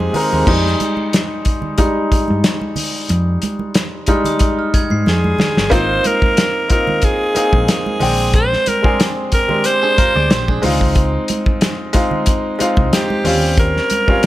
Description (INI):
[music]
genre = lush 1970s-style soul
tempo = 92 BPM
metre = 4/4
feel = swing 54% on 16ths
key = unclear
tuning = A4 = 441 Hz
[part]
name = raspy alto saxophone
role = melody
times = 0.0-0.5, 5.1-14.3 s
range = G4 to C5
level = -17 LUFS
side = right 1 dB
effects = none
[part]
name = clear grand piano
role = accompaniment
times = 0.0-14.3 s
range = G3 to G5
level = -19 LUFS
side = equal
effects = none
[part]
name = hollow-body short-scale fingered electric bass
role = bass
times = 0.0-13.8 s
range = G1 to Ab2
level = -18 LUFS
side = equal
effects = none
[part]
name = congas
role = percussion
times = 0.0-14.3 s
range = none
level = -26 LUFS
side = right 3 dB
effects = none
[part]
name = warm soul drum kit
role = drums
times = 0.1-14.3 s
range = crash cymbal, hi-hat, kick drum, snare drum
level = -17 LUFS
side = equal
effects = none
[part]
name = glockenspiel with soft plastic mallets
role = texture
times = 4.1-5.7 s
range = Eb6 to C7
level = -28 LUFS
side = right 2 dB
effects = none
[part]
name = clean electric guitar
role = riff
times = 9.8-10.8 s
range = D4 to D5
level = -24 LUFS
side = right 4 dB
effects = vibrato effect
[sound]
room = studio reverb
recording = none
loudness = -13 LUFS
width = side -15 dB against mid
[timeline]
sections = 0.5-5.7 A section; 5.7-14.3 B section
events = grand piano solo 0.5-5.7; drum fill 5.1-5.7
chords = 0.5 Fm7; 5.7 Ab69; 8.0 Bb13; 10.6 Dbmaj9; 13.3 Eb13